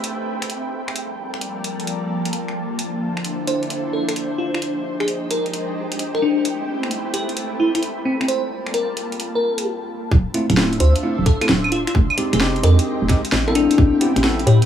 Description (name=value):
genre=UK garage, two-step garage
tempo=131 BPM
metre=4/4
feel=swing 67% on 16ths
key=D minor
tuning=A4 = 440 Hz
part: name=soft string machine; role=sustained chords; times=0.0-14.7 s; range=D3 to A5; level=-31 LUFS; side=equal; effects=ensemble chorus, sidechain pumping
part: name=garage drum kit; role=drums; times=0.0-14.7 s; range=claves, finger snaps, hi-hat, snare drum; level=-24 LUFS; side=equal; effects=overdrive
part: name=ethereal airy pad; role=texture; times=0.0-14.7 s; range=F3 to E6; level=-27 LUFS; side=equal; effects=ensemble chorus, built-in reverb, sidechain pumping
part: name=bell-like FM electric piano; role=melody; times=3.5-14.6 s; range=C4 to C5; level=-22 LUFS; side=left 2 dB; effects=chorus, digital delay
part: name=hollow knocking FM bass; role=bass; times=10.1-14.6 s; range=D1 to A2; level=-17 LUFS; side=equal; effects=none
part: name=electronic kick drum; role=drums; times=10.1-13.9 s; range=none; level=-16 LUFS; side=equal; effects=overdrive
part: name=bell-like tine electric piano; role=stabs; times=10.3-14.4 s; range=Ab3 to A4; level=-22 LUFS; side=equal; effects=vintage 12-bit sampler grit, digital delay
room=light reverb, digital ambience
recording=none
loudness=-18 LUFS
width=side -9 dB against mid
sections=0.0-10.1 A section; 10.1-14.7 B section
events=stop 9.7-10.1; drop 10.1-14.7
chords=0.0 Am9; 1.0 Gm9; 2.8 Dm9; 4.6 Fm9; 6.2 Am9; 8.3 Gm9; 10.1 Dm9; 11.9 Fm9; 13.6 Am9